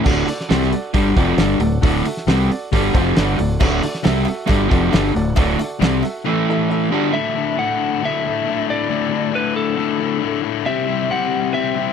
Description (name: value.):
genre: classic rock.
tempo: 136 BPM.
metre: 4/4.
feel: straight.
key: D mixolydian.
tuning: A4 = 440 Hz.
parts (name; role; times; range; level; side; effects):
bright upright piano; accompaniment; 0.0-7.1 s; E4 to A5; -27 LUFS; right 4 dB; none.
crunchy overdriven guitar; riff; 0.0-7.1 s; D2 to C4; -20 LUFS; right 14 dB; none.
distorted electric guitar; riff; 0.0-11.9 s; D2 to C5; -20 LUFS; left 14 dB; distortion.
growling fingered electric bass; bass; 0.1-6.1 s; D1 to C2; -21 LUFS; equal; overdrive.
cloth-damped thuddy drum kit; drums; 0.1-6.1 s; crash cymbal, hi-hat, kick drum, snare drum; -19 LUFS; equal; none.
cowbell; percussion; 3.6-6.1 s; none; -33 LUFS; left 1 dB; none.
lightly driven lead guitar; melody; 7.1-11.9 s; A4 to F#5; -22 LUFS; right 1 dB; slapback echo.
room: little or no reverb.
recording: dry, close 1970s-style studio recording.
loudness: -16 LUFS.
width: side -7 dB against mid.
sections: 0.1-7.1 A section; 7.1-11.9 B section.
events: upright piano fill 2.7-3.6.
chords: 0.1 D; 6.2 A5; 6.9 D; 7.1 Dsus2; 10.7 C.